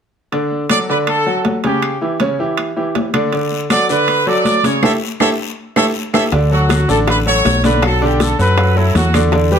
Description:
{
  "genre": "latin, salsa",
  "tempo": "160 BPM",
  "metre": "4/4",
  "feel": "straight",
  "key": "D major",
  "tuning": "A4 = 440 Hz",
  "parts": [
    { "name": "bright grand piano", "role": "accompaniment", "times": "0.3-9.6 s", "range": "C#3 to D5", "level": "-18 LUFS", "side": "equal", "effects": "none" },
    { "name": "congas", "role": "percussion", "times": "0.3-9.6 s", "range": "none", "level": "-21 LUFS", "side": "left 2 dB", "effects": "none" },
    { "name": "timbales", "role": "percussion", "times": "0.3-9.5 s", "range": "none", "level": "-23 LUFS", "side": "right 7 dB", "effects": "none" },
    { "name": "bright trumpet section", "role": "melody", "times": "0.7-9.6 s", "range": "E4 to E5", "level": "-17 LUFS", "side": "right 1 dB", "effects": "none" },
    { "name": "claves", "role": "percussion", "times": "0.7-9.3 s", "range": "none", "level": "-27 LUFS", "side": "left 6 dB", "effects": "none" },
    { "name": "guiro", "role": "percussion", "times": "3.3-9.6 s", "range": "none", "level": "-29 LUFS", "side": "left 9 dB", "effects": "none" },
    { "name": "fingered electric bass", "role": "bass", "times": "6.3-9.6 s", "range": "A1 to F#2", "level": "-15 LUFS", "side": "equal", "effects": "none" },
    { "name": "bongos", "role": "percussion", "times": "6.3-9.6 s", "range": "none", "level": "-25 LUFS", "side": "left 7 dB", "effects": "none" }
  ],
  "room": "moderate studio reverb, RT60 0.8 s",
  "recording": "none",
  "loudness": "-13 LUFS",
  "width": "side -8 dB against mid",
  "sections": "0.3-6.3 A section; 6.3-9.6 B section",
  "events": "band accent 4.8-6.3; drum fill 5.6-6.3",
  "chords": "0.3 D; 1.8 C#dim; 3.3 D6; 4.8 A7; 6.3 Dmaj7; 7.8 Bm7"
}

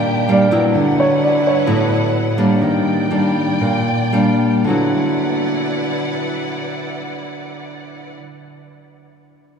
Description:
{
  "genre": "bossa nova",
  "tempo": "111-131 BPM",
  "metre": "4/4",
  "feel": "straight",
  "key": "D major",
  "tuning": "A4 = 440 Hz",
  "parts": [
    { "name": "nylon-string guitar", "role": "accompaniment", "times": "0.0-8.2 s", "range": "A2 to E4", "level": "-17 LUFS", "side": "equal", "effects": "none" },
    { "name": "warm studio string section", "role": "sustained chords", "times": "0.0-8.1 s", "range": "D4 to G5", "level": "-25 LUFS", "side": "equal", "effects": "none" },
    { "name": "dark grand piano", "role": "melody", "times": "0.3-1.9 s", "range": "C#5 to D5", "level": "-19 LUFS", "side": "equal", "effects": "none" }
  ],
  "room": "wet cathedral reverb, RT60 4.7 s",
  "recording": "recorded in a church or concert hall",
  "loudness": "-14 LUFS",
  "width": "side -6 dB against mid",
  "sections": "0.0-4.7 A section; 4.7-9.0 B section",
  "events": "grand piano solo 0.0-4.7; slowing down 0.7-4.7",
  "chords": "0.0 Ebmaj7 (rootless); 0.7 D69; 2.6 Ebmaj7; 4.7 D69"
}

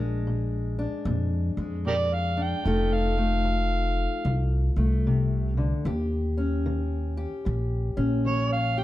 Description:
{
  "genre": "acoustic country blues, solo or duo",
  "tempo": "75 BPM",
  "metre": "4/4",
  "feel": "swing 64% on 8ths",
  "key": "unclear",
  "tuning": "A4 = 439 Hz",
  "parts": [
    { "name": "overdriven harmonica", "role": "melody", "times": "0.0-8.8 s", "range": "G4 to G5", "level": "-28 LUFS", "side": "right 1 dB", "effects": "none" },
    { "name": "fingerpicked steel-string acoustic guitar", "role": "accompaniment", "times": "0.0-8.8 s", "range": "F2 to A4", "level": "-29 LUFS", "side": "left 2 dB", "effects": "none" },
    { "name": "upright bass", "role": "bass", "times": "0.0-8.8 s", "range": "F1 to F2", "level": "-26 LUFS", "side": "equal", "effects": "none" }
  ],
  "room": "moderate recital hall reverb, RT60 1.7 s",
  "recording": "dark, warm production",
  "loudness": "-24 LUFS",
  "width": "side -15 dB against mid",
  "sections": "0.0-8.8 A section",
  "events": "harmonica solo 0.0-8.8",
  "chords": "0.0 Bb7; 2.7 F7; 5.9 Eb7"
}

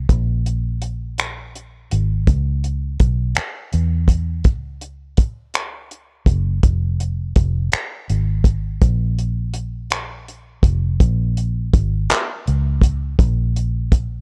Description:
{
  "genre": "slow six-eight R&B",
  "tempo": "55 BPM (dotted quarters)",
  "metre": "6/8",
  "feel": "straight",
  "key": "unclear",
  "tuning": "A4 = 440 Hz",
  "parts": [
    { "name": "vintage muted fingered electric bass", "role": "bass", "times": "0.0-14.2 s", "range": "F1 to Fb2", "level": "-22 LUFS", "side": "equal", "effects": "none" },
    { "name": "warm soul drum kit", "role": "drums", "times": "0.1-14.1 s", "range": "finger snaps, handclaps, hi-hat, kick drum", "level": "-19 LUFS", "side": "equal", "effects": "vintage 12-bit sampler grit" }
  ],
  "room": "little or no reverb",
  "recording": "dark, warm production",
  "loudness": "-20 LUFS",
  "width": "mono",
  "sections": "0.0-11.0 A section; 11.0-14.2 B section",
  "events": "kick muted 1.2-2.3",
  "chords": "none"
}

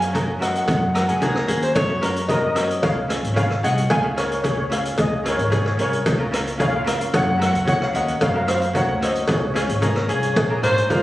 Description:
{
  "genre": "calypso",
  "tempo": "112 BPM",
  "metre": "4/4",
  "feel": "straight",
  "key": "Db major",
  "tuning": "A4 = 440 Hz",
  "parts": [
    { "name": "steel pan", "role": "melody", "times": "0.0-11.0 s", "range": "D4 to Ab5", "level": "-23 LUFS", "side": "left 1 dB", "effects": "none" },
    { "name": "ukulele", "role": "accompaniment", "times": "0.0-11.0 s", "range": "Db4 to Db5", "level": "-27 LUFS", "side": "equal", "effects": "none" },
    { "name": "upright bass", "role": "bass", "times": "0.0-11.0 s", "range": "Ab1 to Ab2", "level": "-25 LUFS", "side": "equal", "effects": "none" },
    { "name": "street-band drum kit", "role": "drums", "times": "0.0-11.0 s", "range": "hi-hat, kick drum, rim click", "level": "-24 LUFS", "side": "equal", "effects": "none" },
    { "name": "cowbell", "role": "percussion", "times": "0.2-11.0 s", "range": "none", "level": "-28 LUFS", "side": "left 1 dB", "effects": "none" },
    { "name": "clear alto saxophone", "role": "second line", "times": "0.9-2.1, 9.8-11.0 s", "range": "Ab4 to Db5", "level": "-23 LUFS", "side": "equal", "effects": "none" }
  ],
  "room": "moderate concert hall reverb, RT60 2.3 s",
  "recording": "recorded on a phone in the room, studio reverb, compression",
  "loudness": "-18 LUFS",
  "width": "side -16 dB against mid",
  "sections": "0.0-11.0 A section",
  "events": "none",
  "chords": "0.0 Gb; 2.8 Db; 7.1 Gb; 9.3 Db; 10.4 Bb7"
}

